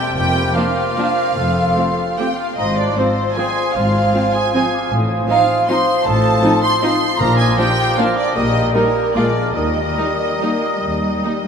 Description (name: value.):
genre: classical.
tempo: 133-169 BPM.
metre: 3/4.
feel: rubato.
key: unclear.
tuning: A4 = 440 Hz.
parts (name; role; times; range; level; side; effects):
mellow cor anglais; second line; 0.0-11.5 s; Bb3 to C5; -25 LUFS; right 1 dB; none.
warm symphonic violin section; second line; 0.0-11.5 s; Bb4 to C6; -19 LUFS; right 2 dB; none.
mellow silver concert flute; second line; 0.2-11.5 s; C6 to F6; -27 LUFS; left 3 dB; none.
warm clarinet; second line; 0.2-11.5 s; A4 to C5; -26 LUFS; right 2 dB; none.
warm bassoon; accompaniment; 0.2-11.5 s; F3 to Ab3; -24 LUFS; left 4 dB; none.
dark symphonic cello section; bass; 0.2-11.5 s; F2 to Bb3; -23 LUFS; left 1 dB; none.
warm symphonic double bass section; bass; 0.2-11.2 s; F1 to Eb2; -24 LUFS; equal; none.
mellow French horn section; sustained chords; 0.5-11.4 s; F3 to F4; -28 LUFS; left 2 dB; none.
warm symphonic violin section; melody; 0.6-11.3 s; C4 to F4; -28 LUFS; equal; none.
warm symphonic viola section; accompaniment; 0.6-11.3 s; F3 to C4; -26 LUFS; right 1 dB; none.
timpani; percussion; 7.2-7.7 s; Bb2; -29 LUFS; right 1 dB; none.
room: wet cathedral reverb, RT60 6.5 s.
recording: in a vast, echoing space.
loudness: -14 LUFS.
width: side -6 dB against mid.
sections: 0.0-11.5 A section.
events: none.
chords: 0.2 Bb/F; 1.4 F; 2.6 Fm/Ab; 4.9 F7/A; 7.2 Bb; 8.4 Eb/Bb; 9.2 Bb7; 9.6 Eb.